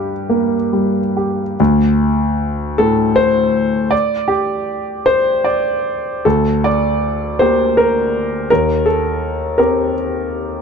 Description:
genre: neoclassical minimalist piano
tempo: 52 BPM (dotted quarters)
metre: 6/8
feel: uneven beats, rubato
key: unclear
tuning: A4 = 440 Hz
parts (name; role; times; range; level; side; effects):
- warm grand piano; solo; 0.0-10.6 s; D2 to D5; -14 LUFS; equal; none
room: light reverb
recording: dark, warm production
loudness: -14 LUFS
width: side -6 dB against mid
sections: 0.0-1.6 A section; 1.6-10.6 B section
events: none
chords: 0.0 Gm; 1.6 Dsus4; 6.2 Gm/D; 8.5 Cm/Eb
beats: 0.30 | 1.59 2.78 | 3.92 5.07 | 6.24 7.41 | 8.50 9.59

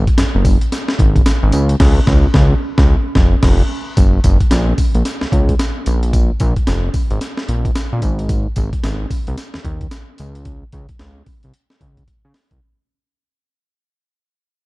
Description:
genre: R&B, new jack swing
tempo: 111 BPM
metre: 4/4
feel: swing 61% on 16ths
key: unclear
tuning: A4 = 443 Hz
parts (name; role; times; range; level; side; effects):
- fat analog bass; bass; 0.0-12.6 s; F1 to Db3; -15 LUFS; equal; none
- breakbeat sampler-style drum kit; drums; 0.1-12.6 s; crash cymbal, hi-hat, kick drum, snare drum, tambourine; -15 LUFS; equal; vintage 12-bit sampler grit
room: little or no reverb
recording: dark, warm production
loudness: -13 LUFS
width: side -21 dB against mid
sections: 0.0-4.0 A section; 4.0-12.6 B section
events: band accent 1.8-4.0; fade-out 4.0-12.6; drum fill 12.1-12.6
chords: none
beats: 0.18 0.73 1.27 | 1.81 2.35 2.89 3.43 | 3.97 4.51 5.05 5.59 | 6.13 6.67 7.21 7.75 | 8.29 8.83 9.38 9.91 | 10.46 11.00 11.54 12.08

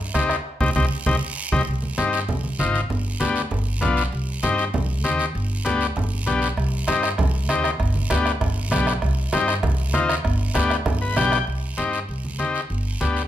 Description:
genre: latin, cumbia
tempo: 196 BPM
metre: 4/4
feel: straight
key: C harmonic minor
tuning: A4 = 440 Hz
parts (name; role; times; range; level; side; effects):
- upright bass; bass; 0.0-13.3 s; G1 to G2; -24 LUFS; equal; none
- combo organ; accompaniment; 0.1-13.2 s; B3 to G5; -23 LUFS; left 4 dB; none
- bombo; percussion; 0.1-1.6, 6.6-11.5 s; none; -26 LUFS; right 2 dB; none
- guiro; percussion; 0.1-13.3 s; none; -33 LUFS; right 6 dB; none
- congas; percussion; 0.2-13.2 s; none; -29 LUFS; right 2 dB; none
room: light reverb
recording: minimal, uncompressed stereo recording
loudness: -20 LUFS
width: side -11 dB against mid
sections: 0.0-1.7 A section; 1.7-11.5 B section; 11.5-13.3 C section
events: band accent 0.5-1.7; drum fill 1.1-1.7; transistor combo organ fill 10.9-11.5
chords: 0.0 Cm; 2.9 G7; 4.1 Cm; 5.4 G; 6.6 Cm; 7.8 G; 9.0 Cm; 10.2 G; 11.5 Cm; 12.7 G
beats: 0.15 | 0.46 0.76 1.07 1.37 | 1.68 1.99 2.29 2.60 | 2.90 3.21 3.52 3.82 | 4.13 4.43 4.74 5.04 | 5.35 5.66 5.96 6.27 | 6.58 6.88 7.19 7.49 | 7.80 8.11 8.41 8.72 | 9.02 9.33 9.64 9.94 | 10.25 10.55 10.86 11.17 | 11.47 11.78 12.09 12.40 | 12.71 13.01

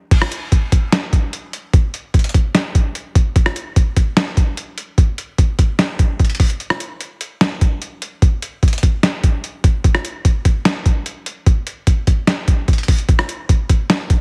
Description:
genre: hip hop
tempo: 148 BPM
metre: 4/4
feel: half-time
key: none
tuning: none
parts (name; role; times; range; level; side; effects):
- boom bap sampler-style drum kit; drums; 0.1-14.2 s; crash cymbal, hi-hat, kick drum, rim click, snare drum; -16 LUFS; equal; none
room: little or no reverb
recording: heavily compressed radio sound, multiband compression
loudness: -17 LUFS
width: mono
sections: 0.1-13.1 A section; 13.1-14.2 A section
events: break 6.6-7.4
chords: none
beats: | 0.11 0.52 0.92 1.33 | 1.74 2.14 2.55 2.95 | 3.36 3.76 4.17 4.57 | 4.98 5.38 5.79 6.20 | 6.60 7.00 7.41 7.82 | 8.22 8.63 9.03 9.44 | 9.84 10.25 10.65 11.06 | 11.46 11.87 12.28 12.68 | 13.09 13.49 13.90

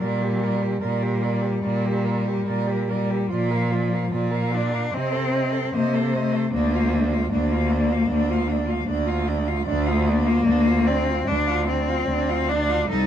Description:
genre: classical, lyrical piece for cello ensemble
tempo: 74 BPM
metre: 4/4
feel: rubato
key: Bb major from 9.7 s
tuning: A4 = 444 Hz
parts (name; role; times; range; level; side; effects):
- rich cello; melody; 0.0-13.1 s; A4 to F5; -30 LUFS; equal; none
- rich cello; second line; 0.0-13.1 s; D4 to C5; -29 LUFS; right 9 dB; none
- rich cello; accompaniment; 0.0-13.1 s; F3 to Eb4; -24 LUFS; left 3 dB; none
- rich cello; bass; 0.0-13.1 s; C2 to C3; -24 LUFS; right 2 dB; none
room: light reverb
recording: dark, warm production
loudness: -20 LUFS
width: side -10 dB against mid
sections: 0.0-13.1 A section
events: none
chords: 0.0 Gm/Bb; 3.3 Bb; 4.9 Adim/C; 6.5 Bb/D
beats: | 0.01 0.83 1.64 2.47 | 3.30 4.13 4.93 5.74 | 6.54 7.32 8.11 8.89 | 9.69 10.47 11.27 12.08 | 12.90

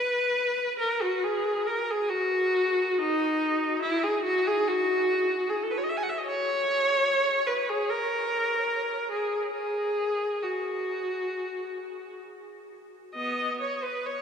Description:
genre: classical, free, expressive piece for unaccompanied viola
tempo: 60-78 BPM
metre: 4/4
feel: rubato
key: unclear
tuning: A4 = 440 Hz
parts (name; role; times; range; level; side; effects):
- rich viola; solo; 0.0-14.2 s; B3 to G#5; -25 LUFS; equal; none
room: wet cathedral reverb, RT60 7.4 s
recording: none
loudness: -25 LUFS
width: side -7 dB against mid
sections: 0.0-14.2 A section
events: none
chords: none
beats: 0.36 1.22 2.10 | 2.98 3.82 4.67 5.49 | 6.27 7.06 7.88 8.71 | 9.53 10.42 11.31 12.20 | 13.15 14.04

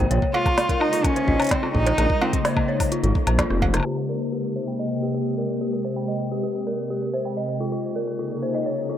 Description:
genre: IDM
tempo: 128 BPM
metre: 4/4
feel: straight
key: Ab major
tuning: A4 = 440 Hz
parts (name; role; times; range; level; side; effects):
- glassy FM pad; sustained chords; 0.0-9.0 s; C3 to Ab4; -27 LUFS; left 2 dB; ensemble chorus, built-in reverb
- dark detuned synth bell; arpeggios; 0.0-9.0 s; F4 to G5; -27 LUFS; equal; chorus, vintage 12-bit sampler grit, low-pass filter, tape echo
- dark detuned saw bass; bass; 0.0-3.8 s; F1 to Bb1; -21 LUFS; equal; none
- organic electronic drum kit; drums; 0.1-9.0 s; cowbell, hi-hat, rim click, snare drum, woodblock; -26 LUFS; equal; low-pass filter on snare, low-pass filter on hats, low-pass filter on perc, low-pass filter on room, tape echo
- electronic kick drum; drums; 0.2-3.7 s; none; -24 LUFS; equal; none
- warm cello; melody; 0.3-2.9 s; Bb3 to F4; -24 LUFS; right 1 dB; tape echo
room: moderate spring reverb, RT60 2.6 s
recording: echo-heavy mix, low-pass filter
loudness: -21 LUFS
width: side -10 dB against mid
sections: 0.0-3.9 A section; 3.9-9.0 B section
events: drum fill 3.4-3.9; filter sweep on ambient pad 3.9-9.0; filter sweep on synth bell 3.9-9.0; filter sweep 3.9-9.0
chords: 0.1 Bbm11; 3.9 Abmaj9; 7.6 Bbm11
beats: | 0.10 0.57 1.04 1.51 | 1.98 2.45 2.92 3.39 | 3.85 4.32 4.79 5.26 | 5.73 6.20 6.67 7.14 | 7.61 8.07 8.54

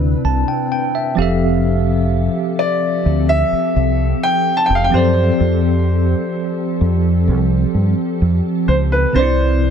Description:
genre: contemporary R&B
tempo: 64 BPM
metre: 4/4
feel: straight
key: unclear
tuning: A4 = 439 Hz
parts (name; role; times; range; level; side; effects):
- warm concert grand piano; melody; 0.0-9.7 s; B4 to A5; -19 LUFS; equal; ping-pong delay
- bell-like tine electric piano; accompaniment; 0.0-9.7 s; C3 to A5; -20 LUFS; equal; medium stereo tremolo
- glassy FM pad; sustained chords; 0.0-9.7 s; C3 to B4; -22 LUFS; left 1 dB; ensemble chorus, built-in reverb
- deep dub fingered electric bass; bass; 0.0-9.7 s; F1 to G2; -16 LUFS; equal; none
room: little or no reverb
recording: none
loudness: -14 LUFS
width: side -8 dB against mid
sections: 0.0-9.1 A section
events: tine electric piano fill 0.0-1.6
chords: 0.0 Cmaj9; 1.2 Fmaj9; 9.1 Cadd9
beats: 0.71 | 1.65 2.58 3.52 4.46 | 5.40 6.33 7.27 8.21 | 9.15

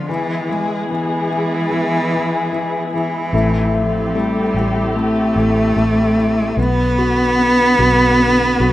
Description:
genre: pop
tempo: 74 BPM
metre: 4/4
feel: straight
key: A minor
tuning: A4 = 440 Hz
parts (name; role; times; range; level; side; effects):
- rich cello; melody; 0.0-8.7 s; E3 to B3; -17 LUFS; right 1 dB; plate reverb
- clear grand piano; accompaniment; 0.0-8.7 s; D3 to F#4; -21 LUFS; left 4 dB; plate reverb
- muted studio string section; sustained chords; 0.0-8.7 s; D3 to G#4; -22 LUFS; equal; plate reverb
- vintage muted fingered electric bass; bass; 3.3-8.7 s; A1 to B1; -20 LUFS; equal; none
room: wet small room reverb, RT60 0.5 s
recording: rough home demo mix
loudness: -14 LUFS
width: side -14 dB against mid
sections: 0.0-8.7 A section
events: none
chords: 0.1 E; 3.3 Am7; 6.6 Bm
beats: | 0.09 0.90 1.71 2.52 | 3.33 4.14 4.96 5.77 | 6.58 7.39 8.20

